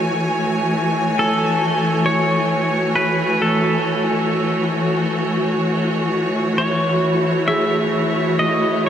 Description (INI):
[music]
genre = ambient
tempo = 67 BPM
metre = 3/4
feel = straight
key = F# minor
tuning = A4 = 440 Hz
[part]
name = pedal steel guitar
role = melody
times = 0.0-8.9 s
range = A4 to E5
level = -22 LUFS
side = equal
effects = shimmer reverb, tape echo
[part]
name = bright studio string section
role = sustained chords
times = 0.0-8.9 s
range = E3 to C#5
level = -18 LUFS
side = equal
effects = none
[part]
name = warm studio violin section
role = texture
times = 0.0-8.9 s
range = E4 to G#5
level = -26 LUFS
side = equal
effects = shimmer reverb
[part]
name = concert harp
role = arpeggios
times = 7.5-8.9 s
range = G#4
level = -25 LUFS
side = right 1 dB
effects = shimmer reverb, tape echo
[sound]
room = wet cathedral reverb, RT60 6.8 s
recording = none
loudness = -16 LUFS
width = side -9 dB against mid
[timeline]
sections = 0.0-8.9 A section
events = none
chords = 0.0 F#m7